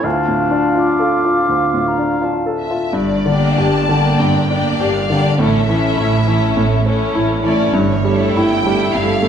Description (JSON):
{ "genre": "classical", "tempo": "80-106 BPM", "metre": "4/4", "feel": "rubato", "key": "unclear", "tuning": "A4 = 440 Hz", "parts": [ { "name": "clear baby grand piano", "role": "melody", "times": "0.0-9.3 s", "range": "D2 to A4", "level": "-17 LUFS", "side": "left 1 dB", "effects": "none" }, { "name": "clear clarinet", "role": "second line", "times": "0.0-2.2 s", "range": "D4", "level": "-22 LUFS", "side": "left 3 dB", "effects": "none" }, { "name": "clear oboe", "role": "second line", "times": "0.0-2.6 s", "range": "F5", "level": "-24 LUFS", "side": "left 2 dB", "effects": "none" }, { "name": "mellow hollow concert flute", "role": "second line", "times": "0.0-3.0 s", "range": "A5 to D6", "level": "-21 LUFS", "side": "left 2 dB", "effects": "none" }, { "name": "dark bassoon", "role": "accompaniment", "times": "0.0-2.6 s", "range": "F4", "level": "-20 LUFS", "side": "right 3 dB", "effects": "none" }, { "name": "rich studio violin section", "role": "melody", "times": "2.6-9.3 s", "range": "C#5 to A5", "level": "-22 LUFS", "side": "left 3 dB", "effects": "none" }, { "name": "rich chamber cello section", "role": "bass", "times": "2.9-9.3 s", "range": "G2 to A2", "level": "-22 LUFS", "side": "right 4 dB", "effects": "none" }, { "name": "rich chamber double bass section", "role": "bass", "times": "3.0-9.3 s", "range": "G1 to A1", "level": "-23 LUFS", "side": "right 4 dB", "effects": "none" }, { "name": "rich chamber violin section", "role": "second line", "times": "3.3-9.3 s", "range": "E4 to D5", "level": "-22 LUFS", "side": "left 4 dB", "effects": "none" }, { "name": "rich symphonic viola section", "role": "accompaniment", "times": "3.3-9.3 s", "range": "A3 to E4", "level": "-21 LUFS", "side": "right 2 dB", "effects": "none" } ], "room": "wet scoring stage reverb, RT60 1.4 s", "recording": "none", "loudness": "-13 LUFS", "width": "side -8 dB against mid", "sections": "0.0-2.9 A section; 2.9-9.3 B section", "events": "none", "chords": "0.0 Dm; 2.9 Gm; 5.4 A; 7.7 A7/G", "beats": "| 0.04 0.77 1.50 2.23 | 2.94 3.59 4.20 4.80 | 5.39 5.97 6.56 7.14 | 7.72 8.36 8.95" }